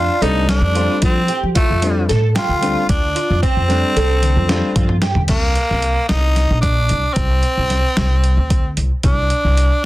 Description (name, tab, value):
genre	progressive instrumental, band music in an uneven meter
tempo	225 BPM (eighths)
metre	7/8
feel	straight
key	C dorian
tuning	A4 = 440 Hz
part	raspy tenor saxophone	melody	0.0-9.9 s	A3 to F4	-20 LUFS	equal	plate reverb
part	fingerpicked twelve-string acoustic guitar	arpeggios	0.0-5.2 s	C4 to A4	-23 LUFS	right 3 dB	analog chorus, plate reverb
part	upright bass	bass	0.0-9.7 s	Bb1 to F3	-17 LUFS	equal	none
part	warm grand piano	accompaniment	0.2-4.9 s	G3 to D4	-23 LUFS	left 3 dB	plate reverb
part	boom bap sampler-style drum kit	drums	0.2-9.7 s	crash cymbal, hi-hat, kick drum, snare drum, toms	-19 LUFS	equal	overdrive
room	light reverb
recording	dense, heavily limited modern master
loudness	-14 LUFS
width	side -17 dB against mid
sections	0.0-5.3 A section; 5.3-9.9 B section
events	drum fill 4.2-5.3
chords	0.0 F6; 5.3 Cm7; 7.2 Csus2